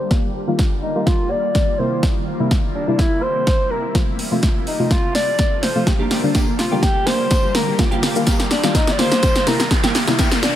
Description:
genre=dance-pop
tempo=125 BPM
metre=4/4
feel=straight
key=unclear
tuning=A4 = 440 Hz
part: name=warm alto saxophone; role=melody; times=0.0-10.6 s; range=D4 to D5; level=-22 LUFS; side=left 1 dB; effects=low-pass filter, tape echo
part: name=shimmering ambient pad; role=sustained chords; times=0.0-10.6 s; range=C3 to G4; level=-26 LUFS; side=equal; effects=chorus, built-in reverb, sidechain pumping, low-pass filter
part: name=impact and riser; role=sound effects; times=0.0-0.1, 7.9-10.6 s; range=none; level=-28 LUFS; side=equal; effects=none
part: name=deep mellow chord stab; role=accompaniment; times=0.1-10.4 s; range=C3 to G4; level=-23 LUFS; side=left 2 dB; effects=chorus, sidechain pumping, low-pass filter
part: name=deep house drum kit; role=drums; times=0.1-10.5 s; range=hi-hat, kick drum, shaker, snare drum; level=-18 LUFS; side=equal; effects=overdrive
part: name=twelve-string electric guitar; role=riff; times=5.9-10.5 s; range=Bb3 to G4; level=-25 LUFS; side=right 2 dB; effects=ensemble chorus, low-pass filter
part: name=tambourine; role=percussion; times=6.3-10.3 s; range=none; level=-36 LUFS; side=left 3 dB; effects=none
room=light reverb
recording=none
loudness=-15 LUFS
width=side -11 dB against mid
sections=0.0-10.6 A section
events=build-up 0.0-10.6; drum fill 0.0-10.6; filter sweep 0.0-10.6; riser 7.9-10.6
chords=0.1 Ebadd9; 1.8 C7; 4.0 F; 5.9 Gm; 7.8 Ebadd9; 9.5 C7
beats=| 0.11 0.59 1.07 1.55 | 2.03 2.51 2.99 3.47 | 3.95 4.43 4.91 5.39 | 5.87 6.35 6.83 7.31 | 7.79 8.27 8.75 9.23 | 9.71 10.19

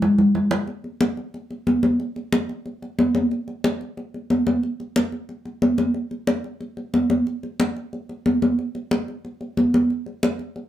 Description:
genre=latin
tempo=182 BPM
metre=4/4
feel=straight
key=none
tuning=none
part: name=congas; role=percussion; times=0.0-10.7 s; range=none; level=-20 LUFS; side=equal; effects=none
room=wet studio reverb, RT60 0.6 s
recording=none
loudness=-20 LUFS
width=side -12 dB against mid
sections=0.7-10.7 A section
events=drum fill 0.0-0.7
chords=none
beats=0.02 0.35 | 0.68 1.01 1.34 1.67 | 2.00 2.32 2.65 2.98 | 3.31 3.64 3.97 4.30 | 4.63 4.96 5.29 5.62 | 5.95 6.28 6.61 6.94 | 7.27 7.60 7.92 8.26 | 8.59 8.91 9.24 9.57 | 9.90 10.23 10.56

